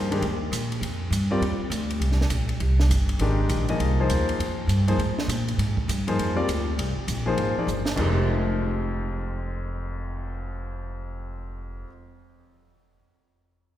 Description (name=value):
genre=modal jazz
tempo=201 BPM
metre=4/4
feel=swing 62% on 8ths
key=F dorian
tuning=A4 = 440 Hz
part: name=clear concert grand piano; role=accompaniment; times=0.0-11.9 s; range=F2 to Eb5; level=-28 LUFS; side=left 2 dB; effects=none
part: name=upright bass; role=bass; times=0.0-11.8 s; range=F1 to Bb2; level=-25 LUFS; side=equal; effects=none
part: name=compact cocktail drum kit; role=drums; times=0.1-10.3 s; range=crash cymbal, cymbal swell, hi-hat, kick drum, ride cymbal, snare drum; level=-33 LUFS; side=right 2 dB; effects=none
room=wet church reverb, RT60 2.8 s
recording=recorded in a church or concert hall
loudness=-22 LUFS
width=side -12 dB against mid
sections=0.0-8.0 A section; 8.0-10.4 B section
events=drum fill 7.7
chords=0.0 Fm11